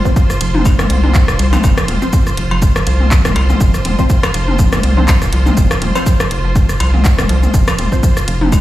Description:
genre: minimal techno.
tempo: 122 BPM.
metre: 4/4.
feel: swing 55% on 16ths.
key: unclear.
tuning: A4 = 440 Hz.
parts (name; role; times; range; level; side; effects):
clear studio string section; texture; 0.0-8.6 s; F4 to C6; -23 LUFS; right 2 dB; sidechain pumping.
mallet-like synth pluck; riff; 0.1-8.4 s; F3 to C4; -24 LUFS; right 2 dB; analog chorus, sidechain pumping, dub echo.
filtered dub chord stab; stabs; 0.1-8.0 s; F3 to C5; -23 LUFS; left 1 dB; phaser, ensemble chorus, digital delay.
electronic kick drum; drums; 0.1-8.6 s; none; -14 LUFS; equal; studio reverb.
garage drum kit; drums; 0.1-8.6 s; cabasa, handclaps, hi-hat; -24 LUFS; equal; studio reverb.
organic electronic drum kit; percussion; 0.3-8.6 s; cowbell, rim click, toms; -18 LUFS; left 2 dB; overdrive, studio reverb, digital delay.
rubbery square bass; bass; 0.4-8.6 s; Eb1 to C2; -15 LUFS; equal; sidechain pumping.
room: little or no reverb.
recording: played on a big sound system in a bare room, stone room reverb.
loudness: -10 LUFS.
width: side -15 dB against mid.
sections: 0.0-8.6 A section.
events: none.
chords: 0.0 F5.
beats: 0.16 0.65 1.15 | 1.64 2.13 2.62 3.11 | 3.60 4.10 4.59 5.08 | 5.57 6.06 6.56 7.05 | 7.54 8.03 8.52.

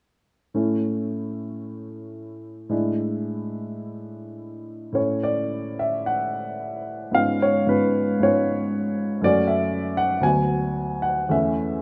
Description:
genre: classical, romantic character piece for solo piano.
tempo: 96-125 BPM.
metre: 4/4.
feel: rubato.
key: A major.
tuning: A4 = 442 Hz.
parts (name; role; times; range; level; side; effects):
warm upright piano; solo; 0.5-11.8 s; D2 to G#5; -24 LUFS; equal; none.
room: light reverb.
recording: close, detailed microphones.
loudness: -24 LUFS.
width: mono.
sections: 0.6-5.0 A section; 5.0-11.8 B section.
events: none.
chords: 0.6 A; 2.7 E7/A; 5.0 A; 7.2 C#7/G#; 9.2 F#m7; 10.2 Bm/D.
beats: | 0.56 1.13 1.67 2.20 | 2.71 3.24 3.79 4.36 | 4.96 5.53 6.08 6.62 | 7.16 7.70 8.23 8.74 | 9.24 9.72 10.23 10.77 | 11.32.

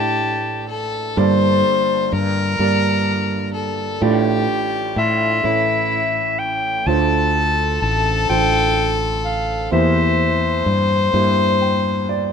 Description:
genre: acoustic folk-pop ballad.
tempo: 42 BPM (dotted quarters).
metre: 6/8.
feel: straight.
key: D minor.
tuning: A4 = 439 Hz.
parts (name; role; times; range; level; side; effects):
bright clarinet; melody; 0.0-10.7 s; E5 to A5; -20 LUFS; left 2 dB; none.
warm violin; second line; 0.0-12.3 s; E4 to C5; -21 LUFS; left 4 dB; none.
warm concert grand piano; accompaniment; 0.0-12.3 s; G1 to G5; -22 LUFS; right 5 dB; none.
fretless electric bass; bass; 0.0-12.3 s; A1 to A2; -21 LUFS; left 1 dB; none.
room: light reverb.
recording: minimal, uncompressed stereo recording.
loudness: -16 LUFS.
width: side -7 dB against mid.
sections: 0.0-6.9 A section; 6.9-12.3 B section.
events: none.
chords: 0.0 Asus4; 1.2 Gmadd9; 4.0 Dm/A; 5.4 A; 6.9 Dm7; 9.7 C7/E.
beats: | 1.18 2.60 | 4.03 5.45 | 6.87 8.29 | 9.72 11.14.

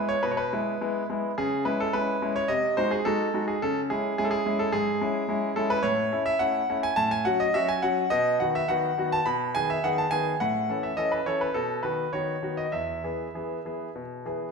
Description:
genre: classical-period piano sonatina.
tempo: 105 BPM.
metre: 4/4.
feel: rubato.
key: E major.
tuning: A4 = 439 Hz.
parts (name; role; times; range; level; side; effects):
bright concert grand piano; solo; 0.0-14.5 s; E2 to B5; -24 LUFS; equal; none.
room: wet recital hall reverb, RT60 1.4 s.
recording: minimal, uncompressed stereo recording.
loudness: -24 LUFS.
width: side -4 dB against mid.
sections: 0.0-14.5 A section.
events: none.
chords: 0.0 E; 1.4 C#m; 2.5 G#7/B#; 3.6 C#m; 5.8 A; 7.0 F#m/A; 8.1 B; 9.2 G#m/B; 10.4 A; 11.5 B; 12.7 E.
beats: 0.23 0.80 | 1.37 1.93 2.50 3.06 | 3.62 4.18 4.74 5.29 | 5.84 6.40 6.97 7.54 | 8.11 8.68 9.25 9.83 | 10.40 10.97 11.54 12.12 | 12.73 13.35 13.96.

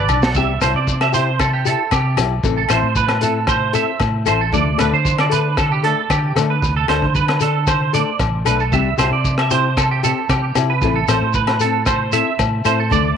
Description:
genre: highlife guitar band.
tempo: 114 BPM.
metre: 4/4.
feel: straight.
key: C major.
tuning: A4 = 442 Hz.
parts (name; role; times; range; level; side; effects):
clean electric guitar; arpeggios; 0.0-13.2 s; G4 to E5; -19 LUFS; right 11 dB; ensemble chorus, slapback echo.
fingered electric bass; bass; 0.0-13.2 s; A1 to D3; -20 LUFS; equal; none.
nylon-string guitar; accompaniment; 0.1-13.1 s; E3 to A4; -24 LUFS; left 12 dB; none.
crunchy breakbeat drum kit; drums; 0.1-13.0 s; hi-hat, kick drum, rim click, snare drum; -23 LUFS; right 1 dB; none.
agogo bells; percussion; 0.1-12.8 s; none; -24 LUFS; left 14 dB; none.
shekere; percussion; 0.1-13.0 s; none; -25 LUFS; left 7 dB; none.
room: moderate spring reverb, RT60 2.6 s.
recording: 1960s-style stereo with parts hard left and right.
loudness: -15 LUFS.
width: side -7 dB against mid.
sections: 0.3-13.2 A section.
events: drum fill 0.0-0.3.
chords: 0.3 C; 2.4 Am; 4.5 D5; 8.7 C; 10.8 Am.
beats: | 0.34 0.86 1.39 1.91 | 2.43 2.96 3.48 4.00 | 4.53 5.05 5.58 6.10 | 6.62 7.15 7.67 8.20 | 8.72 9.24 9.77 10.29 | 10.82 11.34 11.87 12.39 | 12.91.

